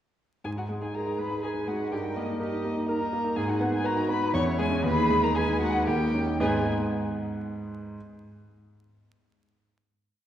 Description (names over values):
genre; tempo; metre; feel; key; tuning
quick classical-period movement for piano quartet; 111-125 BPM; 3/4; rubato; G# minor; A4 = 440 Hz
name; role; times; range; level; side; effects
muted violin; melody; 0.4-6.7 s; D#5 to C#6; -31 LUFS; left 3 dB; none
muted violin; second line; 0.4-6.7 s; D#4 to C#5; -35 LUFS; left 1 dB; none
clear grand piano; accompaniment; 0.4-8.0 s; D#2 to D#5; -27 LUFS; right 1 dB; none
muted cello; second line; 0.9-6.7 s; B3 to B4; -35 LUFS; right 4 dB; none
room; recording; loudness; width
wet concert hall reverb, RT60 2.4 s; heard from further back in the room, vinyl crackle; -25 LUFS; side -11 dB against mid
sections
0.4-6.4 A section; 6.4-7.9 final chord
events
none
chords
0.4 G#m; 1.9 D#/G; 3.4 G#m; 4.3 C#m/E; 4.8 G#m/D#; 5.9 D#7; 6.4 G#m